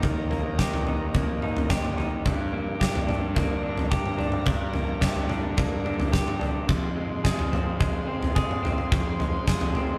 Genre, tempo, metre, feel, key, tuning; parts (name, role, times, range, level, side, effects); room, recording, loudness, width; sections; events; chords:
post-rock; 108 BPM; 4/4; straight; A4 = 440 Hz
dark chamber string section; sustained chords; 0.0-10.0 s; G4 to C6; -40 LUFS; equal
electric guitar through a small old amp; arpeggios; 0.0-10.0 s; F2 to Ab4; -34 LUFS; equal
fuzz fingered electric bass; bass; 0.0-10.0 s; Eb2 to G2; -34 LUFS; equal; overdrive
huge arena drum kit; drums; 0.0-9.9 s; kick drum, snare drum, toms; -28 LUFS; equal
moderate large studio reverb, RT60 0.9 s; band playing live in one room; -26 LUFS; mono
0.0-10.0 A section
0.0 Eb; 2.3 Gm; 6.7 Fm